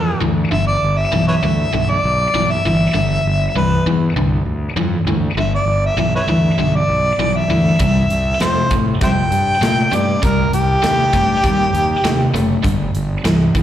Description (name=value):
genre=blues rock power trio and southern rock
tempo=99 BPM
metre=4/4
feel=straight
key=G mixolydian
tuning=A4 = 441 Hz
part: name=warm harmonica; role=melody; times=0.0-12.3 s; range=G4 to G5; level=-18 LUFS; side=equal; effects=overdrive, slapback echo, analog delay
part: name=biting overdriven guitar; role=riff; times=0.0-13.6 s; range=G2 to A3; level=-18 LUFS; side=equal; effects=slapback echo
part: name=fuzz fingered electric bass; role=bass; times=0.0-13.6 s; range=F#1 to Bb2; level=-19 LUFS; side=equal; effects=overdrive
part: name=big rock drum kit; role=drums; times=7.8-13.6 s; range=hi-hat, kick drum, snare drum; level=-22 LUFS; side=equal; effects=none
room=little or no reverb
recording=live gig heard through the venue's PA, recital hall reverb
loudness=-14 LUFS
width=side -11 dB against mid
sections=0.0-13.6 A section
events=none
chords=0.0 G; 7.8 C; 10.2 Cm; 12.6 G5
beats=| 0.52 1.12 1.73 2.34 | 2.94 3.55 4.16 4.76 | 5.37 5.97 6.58 7.19 | 7.79 8.40 9.01 9.61 | 10.22 10.83 11.43 12.04 | 12.64 13.25